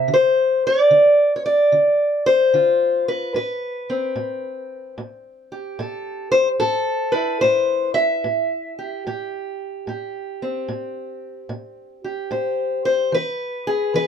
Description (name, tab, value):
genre	acoustic country blues, solo or duo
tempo	74 BPM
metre	4/4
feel	swing 65% on 8ths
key	A minor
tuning	A4 = 440 Hz
part	fingerpicked steel-string acoustic guitar	solo	0.0-14.1 s	A2 to E5	-18 LUFS	left 1 dB	none
room	light reverb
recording	close, detailed microphones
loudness	-17 LUFS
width	side -8 dB against mid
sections	0.0-14.1 A section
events	none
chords	0.1 Dm7; 3.4 Am9; 13.1 E